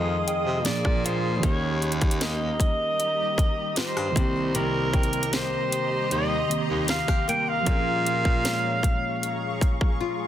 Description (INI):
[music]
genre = contemporary R&B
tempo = 77 BPM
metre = 4/4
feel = straight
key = unclear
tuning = A4 = 439 Hz
[part]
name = warm alto saxophone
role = melody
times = 0.0-10.0 s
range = Bb4 to G5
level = -27 LUFS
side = equal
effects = digital delay
[part]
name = mellow tine electric piano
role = accompaniment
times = 0.0-10.3 s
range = Eb3 to Ab4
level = -32 LUFS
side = right 3 dB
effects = medium stereo tremolo
[part]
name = granular cloud pad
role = sustained chords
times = 0.0-10.3 s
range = G4 to Eb6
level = -33 LUFS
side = right 1 dB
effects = built-in reverb, sidechain pumping
[part]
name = nylon-string guitar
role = arpeggios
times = 0.0-10.3 s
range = F2 to G4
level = -33 LUFS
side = left 6 dB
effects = none
[part]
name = breathy baritone saxophone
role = bass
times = 0.0-9.0 s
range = C2 to C3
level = -30 LUFS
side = equal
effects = none
[part]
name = soft synth bell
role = texture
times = 0.0-10.3 s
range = Db5 to Ab5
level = -41 LUFS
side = right 2 dB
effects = chorus, phaser, digital delay
[part]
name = trap drum kit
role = drums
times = 0.3-10.0 s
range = hi-hat, kick drum, rim click, snare drum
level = -24 LUFS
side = equal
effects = none
[sound]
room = light reverb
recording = dense, heavily limited modern master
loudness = -22 LUFS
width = side -11 dB against mid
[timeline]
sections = 0.0-10.3 A section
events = break 10.0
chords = 0.0 Fm7; 0.7 Bb7; 1.4 Eb7; 4.2 Cm7; 7.7 Bbm7